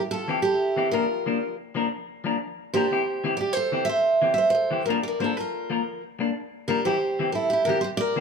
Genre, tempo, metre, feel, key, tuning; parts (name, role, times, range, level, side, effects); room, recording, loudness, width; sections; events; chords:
highlife; 122 BPM (dotted quarters); 12/8; straight; C mixolydian; A4 = 440 Hz
picked steel-string acoustic guitar; melody; 0.1-8.2 s; E4 to E5; -23 LUFS; right 2 dB
clean electric guitar; accompaniment; 0.3-8.2 s; E3 to Bb4; -28 LUFS; left 5 dB; spring reverb
moderate studio reverb, RT60 0.7 s; band playing live in one room; -22 LUFS; side -5 dB against mid
0.0-8.2 A section
0.0 C; 0.9 Bb; 2.9 C; 4.9 Bb; 6.9 C